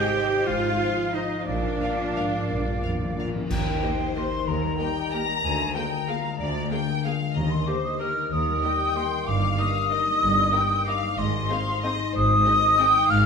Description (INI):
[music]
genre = classical, orchestral ballroom waltz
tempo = 167-203 BPM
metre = 3/4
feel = rubato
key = Eb major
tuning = A4 = 441 Hz
[part]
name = clear oboe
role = second line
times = 0.0-3.3 s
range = D5 to G5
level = -32 LUFS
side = right 2 dB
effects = none
[part]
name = dark symphonic violin section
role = second line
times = 0.0-12.9 s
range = Ab4 to G5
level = -39 LUFS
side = left 1 dB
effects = none
[part]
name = silver concert flute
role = second line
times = 0.0-13.3 s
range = Eb5 to F6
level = -25 LUFS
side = left 1 dB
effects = none
[part]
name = warm clarinet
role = second line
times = 0.0-3.3 s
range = C5 to F5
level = -36 LUFS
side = left 1 dB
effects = none
[part]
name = clear symphonic viola section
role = accompaniment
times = 0.0-12.9 s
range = Bb3 to Ab4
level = -32 LUFS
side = right 3 dB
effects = none
[part]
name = dark French horn section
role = sustained chords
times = 0.0-3.3 s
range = Eb3 to C5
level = -33 LUFS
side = left 2 dB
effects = none
[part]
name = concert harp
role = arpeggios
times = 0.0-13.3 s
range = G2 to Eb5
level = -30 LUFS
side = left 6 dB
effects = none
[part]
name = rich symphonic violin section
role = melody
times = 0.2-13.3 s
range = Bb4 to Bb5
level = -31 LUFS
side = left 4 dB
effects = none
[part]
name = rich symphonic cello section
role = bass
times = 0.5-13.3 s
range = D2 to Bb2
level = -32 LUFS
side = right 3 dB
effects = none
[part]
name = rich symphonic double bass section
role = bass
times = 0.5-13.3 s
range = G1 to Eb2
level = -32 LUFS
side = right 3 dB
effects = none
[part]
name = cymbal swell, clash cymbals and concert bass drum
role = percussion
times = 1.5-4.1 s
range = none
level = -33 LUFS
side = right 1 dB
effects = none
[part]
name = timpani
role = percussion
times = 1.5-3.4, 7.4-7.8 s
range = Bb2 to Eb3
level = -34 LUFS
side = equal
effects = none
[sound]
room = wet recital hall reverb, RT60 1.5 s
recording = minimal, uncompressed stereo recording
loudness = -22 LUFS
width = side -6 dB against mid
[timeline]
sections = 0.0-3.5 A section; 3.5-13.3 B section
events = timpani fill 1.5-3.5; band accent 3.5-3.8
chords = 0.5 Fm/Ab; 1.5 Bb; 3.5 Eb; 5.4 Bb7/D; 7.4 Eb; 9.3 Eb/G; 11.2 Ab